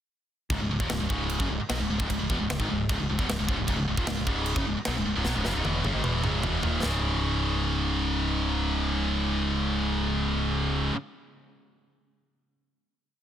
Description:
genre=heavy metal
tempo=152 BPM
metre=4/4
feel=straight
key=C# minor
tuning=A4 = 440 Hz
part: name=scooped high-gain guitar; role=riff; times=0.5-11.0 s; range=C#2 to F#3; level=-27 LUFS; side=equal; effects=distortion
part: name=modern bright picked electric bass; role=bass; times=0.5-10.9 s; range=C#1 to B1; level=-31 LUFS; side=equal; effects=none
part: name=tight metal drum kit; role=drums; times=0.5-6.9 s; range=crash cymbal, kick drum, snare drum, toms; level=-31 LUFS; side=equal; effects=soft clipping on snare
room=small room ambience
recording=dense, heavily limited modern master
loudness=-25 LUFS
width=side -10 dB against mid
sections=0.5-6.8 riff; 6.8-10.0 final chord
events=drum fill 5.3-6.8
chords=0.5 C#m; 6.8 C#5

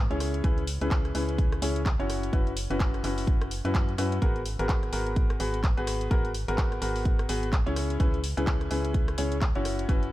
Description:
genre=piano house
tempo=127 BPM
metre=4/4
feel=swing 59% on 16ths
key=unclear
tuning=A4 = 444 Hz
part: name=organ-like FM bass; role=bass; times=0.0-10.1 s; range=F#1 to F#2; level=-31 LUFS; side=equal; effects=sidechain pumping
part: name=clear grand piano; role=riff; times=0.1-10.1 s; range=B3 to C#5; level=-30 LUFS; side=left 2 dB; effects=sidechain pumping, low-pass filter, dub echo
part: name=house drum kit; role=drums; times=0.1-10.1 s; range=handclaps, hi-hat, rim click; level=-36 LUFS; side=equal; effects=studio reverb
part: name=electronic kick drum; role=drums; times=0.4-10.0 s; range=none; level=-26 LUFS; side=equal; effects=studio reverb
room=little or no reverb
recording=none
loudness=-25 LUFS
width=side -16 dB against mid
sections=0.0-10.1 A section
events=none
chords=0.2 C#m7; 2.1 F#7sus4; 4.2 G#m9; 7.8 C#m7

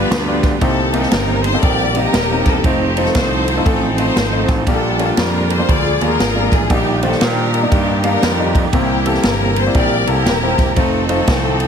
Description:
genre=uptempo gospel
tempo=118 BPM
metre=4/4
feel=swing 64% on 8ths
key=unclear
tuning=A4 = 440 Hz
part: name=bright studio string section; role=melody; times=0.0-11.7 s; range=Bb3 to D5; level=-19 LUFS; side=left 2 dB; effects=none
part: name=warm concert grand piano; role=accompaniment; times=0.0-11.5 s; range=G2 to F5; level=-20 LUFS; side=left 2 dB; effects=none
part: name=mellow tonewheel organ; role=sustained chords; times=0.0-11.7 s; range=Eb3 to Eb5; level=-23 LUFS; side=right 5 dB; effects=fast rotary speaker, overdrive, chorus vibrato
part: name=overdriven picked electric bass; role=bass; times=0.0-11.7 s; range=Eb1 to Bb2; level=-20 LUFS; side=right 1 dB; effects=none
part: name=swinging big-band drum kit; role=drums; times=0.1-11.7 s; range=kick drum, ride cymbal, snare drum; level=-19 LUFS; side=equal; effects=none
room=light reverb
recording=heavily compressed radio sound, multiband compression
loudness=-13 LUFS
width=side -7 dB against mid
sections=0.0-11.7 A section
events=tonewheel organ fill 11.3-11.7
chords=0.0 G7; 0.6 Cm7; 2.6 F7; 4.7 Bb6; 5.7 Bb7/D; 6.7 Ebmaj7/Bb; 8.7 C7; 10.8 F7

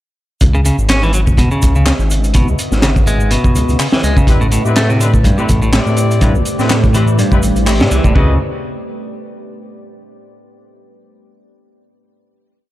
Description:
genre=breakbeat, breaks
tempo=124 BPM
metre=4/4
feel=swing 55% on 16ths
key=unclear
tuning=A4 = 438 Hz
part: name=deep dark ambient pad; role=sustained chords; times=1.2-8.4 s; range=A3 to F#5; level=-23 LUFS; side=right 1 dB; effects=chorus, built-in reverb, sidechain pumping
part: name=dark detuned saw bass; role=bass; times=0.4-8.4 s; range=E1 to A2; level=-14 LUFS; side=equal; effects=tube saturation
part: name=crunchy breakbeat drum kit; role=drums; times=0.4-8.3 s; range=hi-hat, kick drum, snare drum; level=-14 LUFS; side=equal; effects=none
part: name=electronic shaker and handclaps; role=drums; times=0.4-8.1 s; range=none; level=-24 LUFS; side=equal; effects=none
part: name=clean electric guitar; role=riff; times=0.5-8.4 s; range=G2 to C#4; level=-18 LUFS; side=equal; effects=spring reverb, digital delay
part: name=mellow horn section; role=stabs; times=4.3-8.3 s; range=C4 to D#5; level=-22 LUFS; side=left 3 dB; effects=digital delay
room=small room ambience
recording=dark, warm production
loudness=-10 LUFS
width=side -15 dB against mid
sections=0.4-8.2 drop; 8.2-10.1 final chord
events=drop 0.4-8.2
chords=0.4 C#m11; 4.3 Am11; 8.2 C#m11

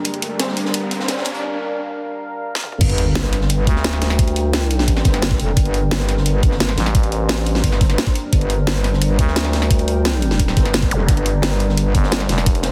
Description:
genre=dark technical drum and bass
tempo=174 BPM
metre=4/4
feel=straight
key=G minor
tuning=A4 = 440 Hz
part: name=deep dark ambient pad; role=sustained chords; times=0.0-12.7 s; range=G3 to G5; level=-28 LUFS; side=equal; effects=chorus, built-in reverb, sidechain pumping
part: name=crunchy breakbeat drum kit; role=drums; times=0.0-12.7 s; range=hi-hat, snare drum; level=-31 LUFS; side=equal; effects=none
part: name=riser, sub drop and zap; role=sound effects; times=0.0-4.2, 10.9-11.0 s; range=none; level=-30 LUFS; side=equal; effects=none
part: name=drum and bass drum kit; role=drums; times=0.1-12.7 s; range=crash cymbal, hi-hat, snare drum, toms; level=-24 LUFS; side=equal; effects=studio reverb
part: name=metallic wobble bass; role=bass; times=2.8-11.9 s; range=F1 to G1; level=-21 LUFS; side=equal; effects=chorus, overdrive, sidechain pumping
part: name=electronic kick drum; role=drums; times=2.8-12.5 s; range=none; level=-19 LUFS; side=equal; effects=studio reverb
part: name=growling FM bass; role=bass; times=3.7-12.7 s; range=F1 to D2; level=-21 LUFS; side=equal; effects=none
room=light reverb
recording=dense, heavily limited modern master, high-pass filter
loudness=-18 LUFS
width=mono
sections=0.0-2.8 A section; 2.8-12.7 B section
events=build-up 0.0-2.8; riser 0.0-1.4; break 1.4-2.8; drum fill 2.6; drop 2.8-12.7; impact 2.8-4.2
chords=0.0 Gm

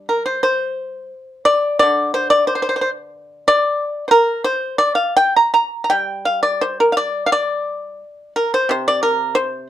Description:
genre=chinese traditional, Chinese solo plucked strings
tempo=82-92 BPM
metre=2/4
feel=rubato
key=G yu mode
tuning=A4 = 440 Hz
part: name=pipa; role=solo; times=0.0-9.7 s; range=C3 to Bb5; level=-15 LUFS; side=equal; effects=none
room=light reverb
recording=dark, warm production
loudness=-15 LUFS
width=side -12 dB against mid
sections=0.4-9.7 A section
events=none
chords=none

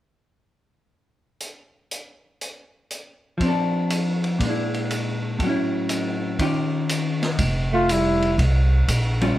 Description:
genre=jazz, small-group swing and bop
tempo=121 BPM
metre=4/4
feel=swing 67% on 8ths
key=unclear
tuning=A4 = 441 Hz
part: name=open jazz drum kit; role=drums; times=1.4-9.3 s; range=hi-hat, kick drum, ride cymbal, snare drum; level=-28 LUFS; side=right 1 dB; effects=none
part: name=vintage hollow-body jazz guitar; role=accompaniment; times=3.4-9.4 s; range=A2 to A4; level=-22 LUFS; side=left 1 dB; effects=none
part: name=upright bass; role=bass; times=7.4-9.3 s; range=F1 to C2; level=-20 LUFS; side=equal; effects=none
part: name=warm flugelhorn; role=melody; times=7.7-8.4 s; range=E4 to F4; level=-21 LUFS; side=left 1 dB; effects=none
part: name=mellow alto saxophone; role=second line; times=7.7-8.4 s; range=G3 to A3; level=-25 LUFS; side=right 4 dB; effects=none
room=moderate large studio reverb, RT60 1.0 s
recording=none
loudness=-20 LUFS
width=side -14 dB against mid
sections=1.4-3.4 A section; 3.4-7.4 B section; 7.4-9.4 C section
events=none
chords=1.4 N.C.; 3.4 F6; 4.4 Bb7#11; 5.4 A6; 6.4 Eb9; 7.4 Fsus2

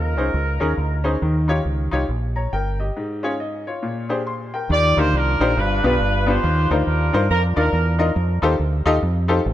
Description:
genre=uptempo gospel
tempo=138 BPM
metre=4/4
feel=swing 62% on 8ths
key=Eb major from 4.7 s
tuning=A4 = 440 Hz
part: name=warm horn section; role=melody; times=0.0-1.0, 4.7-8.1 s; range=D4 to D5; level=-22 LUFS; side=right 1 dB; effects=analog delay
part: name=clear grand piano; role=accompaniment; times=0.0-9.4 s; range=G2 to C6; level=-22 LUFS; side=left 2 dB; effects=none
part: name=deep dub fingered electric bass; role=bass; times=0.0-9.5 s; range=G1 to G2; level=-20 LUFS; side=right 1 dB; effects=none
room=light reverb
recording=echo-heavy mix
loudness=-18 LUFS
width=side -12 dB against mid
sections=0.0-4.7 A section; 4.7-9.5 B section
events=break 3.0-4.7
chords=0.0 Bbm11; 1.2 Eb7; 3.0 Db/Ab; 3.8 Bbsus2; 4.7 Ebmaj9; 5.6 G7; 6.4 Cm11 (rootless); 8.2 F9

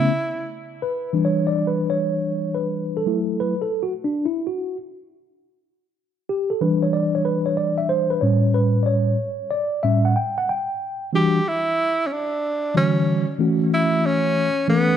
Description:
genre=hip hop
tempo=93 BPM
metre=4/4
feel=swing 66% on 16ths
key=E dorian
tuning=A4 = 440 Hz
part: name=breathy tenor saxophone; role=melody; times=0.0-0.5, 11.2-15.0 s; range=B3 to G4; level=-22 LUFS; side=right 1 dB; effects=analog delay
part: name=mellow tine electric piano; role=accompaniment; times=0.0-14.9 s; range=A2 to G5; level=-20 LUFS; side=equal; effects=medium stereo tremolo
room=moderate echo chamber reverb, RT60 1.6 s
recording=dark, warm production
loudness=-19 LUFS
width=side -9 dB against mid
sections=0.8-11.1 A section; 11.1-15.0 B section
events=tine electric piano solo 0.8-11.1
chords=0.0 Aadd9; 0.8 Em7; 3.1 F#m7; 5.7 Em7; 8.2 A7; 11.1 Em9; 13.4 F#m7

